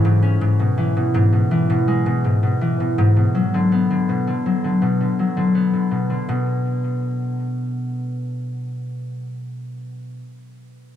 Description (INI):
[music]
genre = folktronica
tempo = 82 BPM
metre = 4/4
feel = straight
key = B dorian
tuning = A4 = 440 Hz
[part]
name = concert harp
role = arpeggios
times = 0.0-10.2 s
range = G#2 to C#4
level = -18 LUFS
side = left 1 dB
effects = low-pass filter
[sound]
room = light reverb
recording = dark, warm production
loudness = -17 LUFS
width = side -10 dB against mid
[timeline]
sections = 0.4-6.3 A section; 6.3-9.2 B section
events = none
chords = 0.4 E; 3.3 Bm; 6.3 N.C.